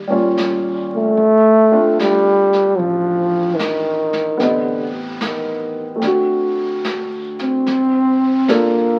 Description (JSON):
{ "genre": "jazz ballad", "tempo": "74 BPM", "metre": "4/4", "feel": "swing 66% on 8ths", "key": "unclear", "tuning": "A4 = 440 Hz", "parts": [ { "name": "breathy trombone", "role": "melody", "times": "0.0-9.0 s", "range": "D3 to C4", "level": "-17 LUFS", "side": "equal", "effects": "none" }, { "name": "upright bass", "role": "bass", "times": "0.0-9.0 s", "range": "G1 to Eb2", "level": "-37 LUFS", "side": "equal", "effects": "none" }, { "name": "warm upright piano", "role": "accompaniment", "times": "0.1-9.0 s", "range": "Bb2 to Eb5", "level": "-22 LUFS", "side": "equal", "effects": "none" }, { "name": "vintage brush drum kit", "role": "drums", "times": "0.4-9.0 s", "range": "brushed snare drum, hi-hat, snare drum", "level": "-31 LUFS", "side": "equal", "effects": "none" } ], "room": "light reverb", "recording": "very old 78 rpm record, vinyl crackle", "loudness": "-17 LUFS", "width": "mono", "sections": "0.0-9.0 A section", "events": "none", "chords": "0.0 Eb9; 1.2 Dm7; 4.4 Am7b5; 6.0 D7; 7.7 Gm7", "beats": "0.37 | 1.18 1.98 2.78 3.59 | 4.39 5.20 6.02 6.84 | 7.66 8.48" }